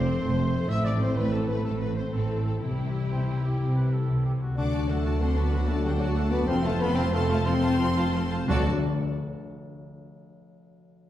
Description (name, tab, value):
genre	cinematic, heroic adventure film score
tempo	123 BPM (dotted quarters)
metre	12/8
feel	uneven beats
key	unclear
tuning	A4 = 438 Hz
part	warm symphonic violin section	melody	0.0-8.7 s	G4 to C6	-40 LUFS	left 2 dB	none
part	clear symphonic violin section	second line	0.0-8.7 s	G4 to D6	-40 LUFS	left 3 dB	none
part	silver concert flute	second line	0.0-8.7 s	G5 to E6	-41 LUFS	equal	none
part	warm clarinet	second line	0.0-8.6 s	F#4 to E5	-36 LUFS	left 1 dB	none
part	rich symphonic viola section	accompaniment	0.0-8.7 s	A3 to D5	-38 LUFS	right 2 dB	none
part	mellow French horn section	sustained chords	0.0-8.6 s	F#3 to E4	-31 LUFS	left 2 dB	none
part	mellow trombone section	sustained chords	0.0-8.6 s	E3 to C4	-36 LUFS	right 2 dB	none
part	concert harp	arpeggios	0.0-10.6 s	A2 to A5	-31 LUFS	left 3 dB	none
part	rich symphonic cello section	bass	0.0-8.7 s	D2 to C3	-31 LUFS	right 1 dB	none
part	rich symphonic double bass section	bass	0.0-8.7 s	F1 to D2	-29 LUFS	right 2 dB	none
part	mellow cor anglais	second line	3.1-8.6 s	F4 to C5	-38 LUFS	right 1 dB	none
part	timpani	percussion	8.5-8.7 s	D3	-31 LUFS	left 1 dB	none
room	wet recital hall reverb, RT60 1.7 s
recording	heard from further back in the room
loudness	-23 LUFS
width	side -12 dB against mid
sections	0.0-4.6 A section; 4.6-8.5 B section; 8.5-10.5 C section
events	slowing down 5.2-8.5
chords	0.0 F; 0.7 Am; 2.6 C; 4.6 D; 6.5 F; 8.5 D